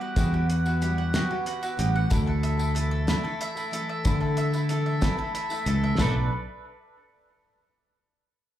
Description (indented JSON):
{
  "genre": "indie folk with a building arrangement",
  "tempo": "62 BPM (dotted quarters)",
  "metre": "6/8",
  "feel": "straight",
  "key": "B minor",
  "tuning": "A4 = 441 Hz",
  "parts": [
    { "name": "picked twelve-string acoustic guitar", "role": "accompaniment", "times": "0.0-6.3 s", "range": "B2 to A4", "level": "-33 LUFS", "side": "left 5 dB", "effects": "lush chorus, plate reverb, slapback echo" },
    { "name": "bowl-back mandolin", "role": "arpeggios", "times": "0.0-6.3 s", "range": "D4 to F#5", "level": "-31 LUFS", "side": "right 3 dB", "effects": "plate reverb, slapback echo, analog delay" },
    { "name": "fingered electric bass", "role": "bass", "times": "0.2-6.3 s", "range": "A1 to D3", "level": "-24 LUFS", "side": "equal", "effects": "none" },
    { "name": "cloth-damped thuddy drum kit", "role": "drums", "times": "0.2-6.1 s", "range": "crash cymbal, hi-hat, kick drum, snare drum, toms", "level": "-27 LUFS", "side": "equal", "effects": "none" },
    { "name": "tambourine", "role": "percussion", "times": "0.2-6.3 s", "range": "none", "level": "-44 LUFS", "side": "left 4 dB", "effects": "none" }
  ],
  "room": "moderate club reverb, RT60 0.5 s",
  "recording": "live gig heard through the venue's PA, club reverb",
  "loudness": "-23 LUFS",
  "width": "side -12 dB against mid",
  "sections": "0.0-6.0 A section; 6.0-7.9 B section",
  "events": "none",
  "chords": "0.0 Emadd9; 2.1 Dsus2; 6.0 Bm7",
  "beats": "| 0.17 1.15 | 2.12 3.09 | 4.06 5.03 | 5.99"
}